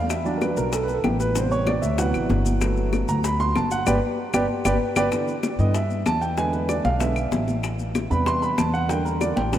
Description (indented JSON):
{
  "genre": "Afro-Cuban jazz",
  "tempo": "191 BPM",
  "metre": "4/4",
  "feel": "straight",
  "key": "G major",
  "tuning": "A4 = 440 Hz",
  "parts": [
    { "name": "warm upright piano", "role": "accompaniment", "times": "0.0-9.6 s", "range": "C3 to C6", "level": "-24 LUFS", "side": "right 2 dB", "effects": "none" },
    { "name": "upright bass", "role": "bass", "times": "0.0-9.6 s", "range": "G1 to G2", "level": "-25 LUFS", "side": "equal", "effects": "none" },
    { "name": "bongos", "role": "percussion", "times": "0.1-9.6 s", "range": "none", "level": "-32 LUFS", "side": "left 6 dB", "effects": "none" },
    { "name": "claves", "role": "percussion", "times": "0.1-9.4 s", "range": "none", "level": "-36 LUFS", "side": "left 5 dB", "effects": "none" },
    { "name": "congas", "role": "percussion", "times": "0.1-9.6 s", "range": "none", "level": "-29 LUFS", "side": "left 1 dB", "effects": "none" },
    { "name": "maracas", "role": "percussion", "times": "0.1-9.6 s", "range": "none", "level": "-39 LUFS", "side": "left 8 dB", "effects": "none" }
  ],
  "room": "wet cathedral reverb, RT60 5.1 s",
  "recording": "in a vast, echoing space",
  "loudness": "-20 LUFS",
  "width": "side -11 dB against mid",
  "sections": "0.0-5.1 A section; 5.1-9.6 A section",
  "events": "upright piano solo 0.0-9.6; band accent 3.9-5.1; drum fill 4.7-5.1",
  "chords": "0.1 Em7; 1.4 Am9; 2.0 D13; 2.6 Gmaj7; 5.1 Em7; 6.4 E7; 7.6 Am7; 8.9 Em7b5"
}